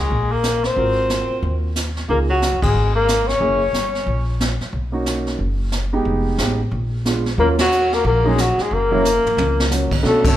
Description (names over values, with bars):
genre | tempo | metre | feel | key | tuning
jazz, small-group swing and bop | 181 BPM | 4/4 | swing 62% on 8ths | unclear | A4 = 439 Hz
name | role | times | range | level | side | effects
breathy flugelhorn | melody | 0.0-4.3, 7.4-10.4 s | Gb4 to Db5 | -20 LUFS | left 3 dB | none
bright tenor saxophone | second line | 0.0-4.3, 7.4-10.4 s | Gb3 to Db4 | -24 LUFS | right 2 dB | none
upright bass | bass | 0.0-10.4 s | F1 to Ab2 | -22 LUFS | equal | none
jazz brush drum kit | drums | 0.1-10.4 s | brushed snare drum, crash cymbal, hi-hat, kick drum, ride cymbal, snare drum, toms | -24 LUFS | right 1 dB | none
warm concert grand piano | accompaniment | 0.8-10.4 s | Gb3 to Bb4 | -23 LUFS | right 3 dB | none
room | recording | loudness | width
moderate recital hall reverb, RT60 1.5 s | recorded in a church or concert hall | -16 LUFS | side -12 dB against mid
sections
0.0-10.0 A section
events
band accent 2.6, 7.5, 10.2; drum fill 9.0-9.7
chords
0.0 Eb7(no3) (rootless); 0.8 Ab13; 2.1 Db6; 3.4 Gb7; 4.7 Bmaj7; 6.1 Fm7b5; 6.7 Bb7b9; 7.4 Ebm9; 8.7 Gb